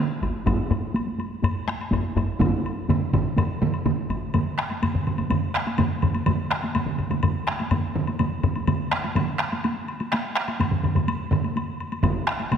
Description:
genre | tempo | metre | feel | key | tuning
japanese traditional, taiko drum ensemble | 124 BPM | 4/4 | straight | none | none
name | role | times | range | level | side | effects
taiko ensemble | percussion | 0.1-12.6 s | none | -29 LUFS | equal | none
taiko ensemble | percussion | 0.2-4.2, 12.0-12.1 s | none | -28 LUFS | equal | none
woodblock | percussion | 0.2-12.6 s | none | -34 LUFS | left 3 dB | none
taiko ensemble | percussion | 0.5-12.6 s | none | -26 LUFS | left 3 dB | none
taiko ensemble | percussion | 2.4-12.6 s | none | -26 LUFS | right 5 dB | none
room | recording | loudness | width
wet scoring stage reverb, RT60 2.0 s | none | -22 LUFS | side -7 dB against mid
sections
0.0-4.3 A section; 4.3-12.6 B section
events
none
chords
none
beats
| 0.47 0.95 1.44 1.92 | 2.41 2.89 3.38 3.86 | 4.34 4.83 5.31 5.79 | 6.27 6.76 7.24 7.72 | 8.20 8.68 9.16 9.64 | 10.12 10.60 11.08 11.56 | 12.04 12.51

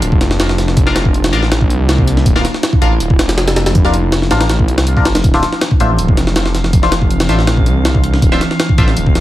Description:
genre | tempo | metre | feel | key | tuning
drum and bass, jungle | 161 BPM | 4/4 | straight | unclear | A4 = 443 Hz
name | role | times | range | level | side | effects
warbly tape-like pad | sustained chords | 0.0-9.2 s | E3 to F4 | -21 LUFS | right 1 dB | chorus, built-in reverb
detuned saw bass | bass | 0.0-9.2 s | D1 to C2 | -15 LUFS | equal | none
jungle sampler-style drum kit | drums | 0.0-9.2 s | hi-hat, kick drum, snare drum | -13 LUFS | equal | none
band-passed chord stab | stabs | 0.9-8.9 s | D4 to F5 | -20 LUFS | left 3 dB | phaser, vintage 12-bit sampler grit, dub echo
drifting glass-harmonics texture | texture | 6.0-9.2 s | F5 | -28 LUFS | right 2 dB | chorus, built-in reverb
room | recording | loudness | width
little or no reverb | vinyl crackle | -10 LUFS | side -15 dB against mid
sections
0.0-9.2 A section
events
none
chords
0.0 Bb/D; 5.2 Dm9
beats
0.02 0.40 | 0.77 1.14 1.51 1.89 | 2.26 2.63 3.01 3.38 | 3.75 4.12 4.50 4.87 | 5.24 5.61 5.99 6.36 | 6.73 7.11 7.48 7.85 | 8.22 8.60 8.97

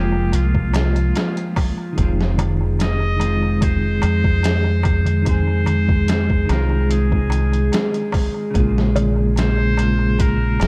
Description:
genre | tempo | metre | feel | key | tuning
trip hop | 73 BPM | 4/4 | straight | F minor | A4 = 440 Hz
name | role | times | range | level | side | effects
trumpet with straight mute | melody | 0.0-10.7 s | F4 to Eb5 | -30 LUFS | equal | dub echo
clean electric guitar | accompaniment | 0.0-10.7 s | Db3 to Ab4 | -27 LUFS | equal | harmonic tremolo, tape echo
dark analog pad | sustained chords | 0.0-10.7 s | F3 to Ab4 | -26 LUFS | equal | chorus, vintage 12-bit sampler grit
deep dub fingered electric bass | bass | 0.0-10.7 s | F1 to F2 | -21 LUFS | equal | none
darbuka | percussion | 0.1-10.7 s | none | -32 LUFS | equal | none
trip hop sampler-style drum kit | drums | 0.3-10.7 s | hi-hat, kick drum, snare drum | -24 LUFS | equal | overdrive
room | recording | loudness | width
moderate plate reverb, RT60 2.4 s | dreamy mix soaked in reverb | -18 LUFS | mono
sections
0.0-10.7 A section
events
none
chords
0.0 Bb7(no3); 2.0 Fm7; 8.6 Bbm7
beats
0.33 1.15 | 1.97 2.80 3.62 4.44 | 5.26 6.08 6.91 7.73 | 8.55 9.37 10.19

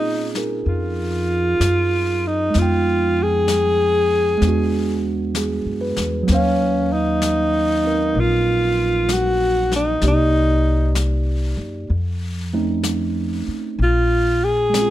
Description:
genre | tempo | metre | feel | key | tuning
jazz ballad | 64 BPM | 4/4 | swing 66% on 8ths | Bb minor | A4 = 440 Hz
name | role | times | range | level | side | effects
warm alto saxophone | melody | 0.0-14.9 s | Db4 to Ab4 | -18 LUFS | equal | plate reverb
tine electric piano | accompaniment | 0.0-14.9 s | Gb3 to G5 | -23 LUFS | right 3 dB | none
upright bass | bass | 0.0-14.9 s | Bb1 to Bb2 | -22 LUFS | equal | none
jazz brush drum kit | drums | 0.3-14.9 s | brushed snare drum, hi-hat, snare drum | -30 LUFS | left 4 dB | none
room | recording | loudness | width
light reverb | none | -17 LUFS | side -13 dB against mid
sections
0.0-14.9 A section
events
none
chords
0.0 Bbm9; 2.5 Fm7b5; 4.4 E9; 6.3 Ebm9; 10.0 Cm7; 11.9 F7b13; 13.8 Bb7(no3)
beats
0.66 1.60 | 2.54 3.48 4.41 5.34 | 6.27 7.21 8.15 9.08 | 10.02 10.95 11.89 12.84 | 13.79 14.74

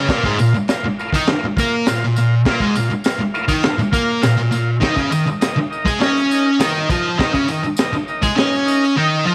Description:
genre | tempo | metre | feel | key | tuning
garage rock duo or trio | 101 BPM | 4/4 | straight | unclear | A4 = 440 Hz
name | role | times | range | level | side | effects
thick fuzz guitar | riff | 0.0-9.3 s | Ab2 to Db5 | -19 LUFS | equal | distortion
combo organ | sustained chords | 0.1-9.3 s | Eb4 to F5 | -26 LUFS | equal | none
crunchy breakbeat drum kit | drums | 0.1-8.5 s | crash cymbal, kick drum, snare drum | -24 LUFS | equal | none
tambourine | percussion | 0.1-8.9 s | none | -37 LUFS | equal | none
room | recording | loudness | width
light reverb, small room ambience | none | -17 LUFS | mono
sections
0.0-9.3 A section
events
none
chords
0.0 Bb5; 4.8 Eb5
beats
| 0.08 0.68 1.27 1.86 | 2.45 3.05 3.64 4.23 | 4.82 5.42 6.01 6.60 | 7.19 7.78 8.38 8.97

